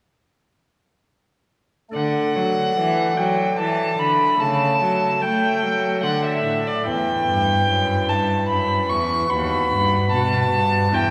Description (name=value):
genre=classical, baroque-style sonata movement with continuo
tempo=74 BPM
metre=3/4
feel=straight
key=D major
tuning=A4 = 445 Hz
part: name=dark violin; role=melody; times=1.9-11.1 s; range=D5 to C#6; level=-23 LUFS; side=equal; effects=none
part: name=chamber organ, flutes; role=accompaniment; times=1.9-11.1 s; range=D#2 to E5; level=-27 LUFS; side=equal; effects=none
part: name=rich cello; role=bass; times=1.9-11.1 s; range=D#2 to A3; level=-26 LUFS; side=equal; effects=none
room=wet church reverb, RT60 2.7 s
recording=recorded in a church or concert hall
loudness=-20 LUFS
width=mono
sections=1.9-11.1 A section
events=none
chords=1.9 D; 4.4 A/C#; 6.0 D5; 6.9 Em; 9.3 B/D#